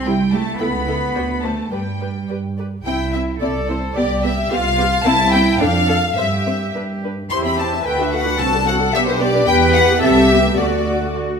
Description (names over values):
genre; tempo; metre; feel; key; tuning
quick classical-period movement for string orchestra; 103-112 BPM; 2/4; rubato; C major; A4 = 441 Hz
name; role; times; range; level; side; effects
rich studio violin section; second line; 0.0-11.1 s; C5 to C6; -22 LUFS; left 3 dB; none
rich studio cello section; bass; 0.0-11.4 s; G3 to B4; -22 LUFS; right 1 dB; none
warm symphonic violin section; melody; 0.1-11.2 s; C5 to C6; -22 LUFS; left 5 dB; none
dark symphonic viola section; accompaniment; 0.1-11.4 s; A3 to E5; -21 LUFS; right 1 dB; none
dark chamber double bass section; bass; 0.1-11.4 s; B1 to G2; -22 LUFS; right 3 dB; none
room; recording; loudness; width
wet recital hall reverb, RT60 1.4 s; none; -15 LUFS; side -6 dB against mid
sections
0.0-2.9 A section; 2.9-11.4 B section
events
none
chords
0.0 C; 0.6 A/C#; 1.1 D7; 1.7 G; 2.9 C; 4.0 G7/C; 5.1 C; 5.6 Dm/F; 6.2 C/G; 6.7 G; 7.3 C/E; 7.9 D; 8.4 D7/C; 8.9 G/B; 9.5 Em; 10.0 C; 10.6 D